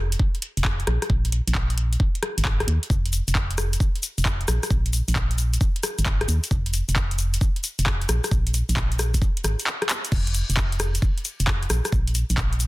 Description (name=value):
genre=UK garage, two-step garage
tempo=133 BPM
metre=4/4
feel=swing 67% on 16ths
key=unclear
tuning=A4 = 439 Hz
part: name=organ-like FM bass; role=bass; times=0.0-12.7 s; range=F1 to Eb2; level=-23 LUFS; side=equal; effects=tube saturation
part: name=garage drum kit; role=drums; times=0.1-12.7 s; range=cabasa, crash cymbal, handclaps, hi-hat, rim click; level=-26 LUFS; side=left 1 dB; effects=none
part: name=electronic kick drum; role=drums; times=0.2-12.5 s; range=none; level=-23 LUFS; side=equal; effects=none
room=little or no reverb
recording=dense, heavily limited modern master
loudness=-21 LUFS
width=side -20 dB against mid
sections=0.0-12.7 A section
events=kick drops out 9.7-10.1; drum fill 9.9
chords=none